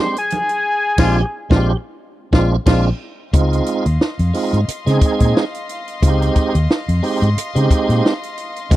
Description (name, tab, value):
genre	funk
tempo	89 BPM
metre	4/4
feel	swing 56% on 16ths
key	unclear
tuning	A4 = 439 Hz
part	fat analog lead	melody	0.0-1.8 s	Ab5 to C6	-18 LUFS	left 1 dB	none
part	tonewheel organ	stabs	0.0-8.8 s	Ab3 to Ab4	-20 LUFS	right 3 dB	chorus vibrato, fast rotary speaker
part	compact cocktail drum kit	drums	0.2-8.8 s	crash cymbal, hi-hat, kick drum, snare drum	-17 LUFS	equal	none
part	congas	percussion	0.3-0.5, 8.7-8.8 s	none	-25 LUFS	right 3 dB	none
part	brilliant trombone	second line	1.0-2.8 s	F4	-24 LUFS	left 7 dB	none
part	vintage muted fingered electric bass	bass	1.0-8.8 s	Bb1 to Db3	-16 LUFS	equal	none
part	warm studio string section	sustained chords	3.3-8.8 s	Eb5 to C6	-28 LUFS	left 2 dB	none
room	small room ambience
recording	dry, close 1970s-style studio recording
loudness	-14 LUFS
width	side -15 dB against mid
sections	0.0-3.3 A section; 3.3-8.8 B section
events	analog synth lead solo 0.0-3.3; band accent 0.7-3.3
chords	0.0 Bb13; 3.3 Dbmaj9